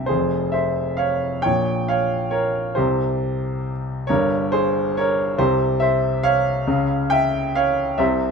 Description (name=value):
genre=classical, lyrical solo piano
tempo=46 BPM (dotted quarters)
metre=6/8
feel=rubato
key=F harmonic minor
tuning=A4 = 440 Hz
part: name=warm baby grand piano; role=solo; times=0.0-8.3 s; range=F1 to G5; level=-18 LUFS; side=equal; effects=none
room=moderate studio reverb, RT60 0.5 s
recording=minimal, uncompressed stereo recording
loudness=-18 LUFS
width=side -5 dB against mid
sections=0.1-8.3 A section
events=none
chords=0.1 Fm; 1.4 Bbm; 2.8 C5; 4.1 Bbm13/G; 5.4 C5; 6.7 C#dim